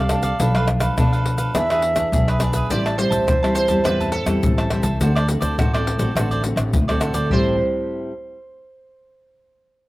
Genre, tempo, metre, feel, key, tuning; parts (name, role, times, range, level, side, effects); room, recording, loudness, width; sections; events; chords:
samba and choro; 104 BPM; 4/4; straight; A minor; A4 = 441 Hz
reedy baroque flute; melody; 0.0-2.4 s; E5 to F5; -22 LUFS; right 2 dB; slapback echo
cavaquinho; accompaniment; 0.0-7.6 s; D4 to A5; -26 LUFS; right 2 dB
nylon-string guitar; accompaniment; 0.0-8.1 s; A2 to A4; -25 LUFS; left 1 dB; slapback echo
upright bass; bass; 0.0-7.6 s; A1 to B2; -22 LUFS; equal
egg shaker, pandeiro, tamborim and surdo; percussion; 0.1-7.4 s; -23 LUFS; left 1 dB
sitar; second line; 2.7-7.6 s; A4 to D5; -23 LUFS; right 2 dB
little or no reverb; recorded outdoors, with no room sound; -17 LUFS; side -18 dB against mid
0.0-2.7 A section; 2.7-7.3 B section; 7.3-9.6 C section
0.4 Bm7b5; 1.6 E7; 2.7 Am7; 5.0 D7; 7.3 Am7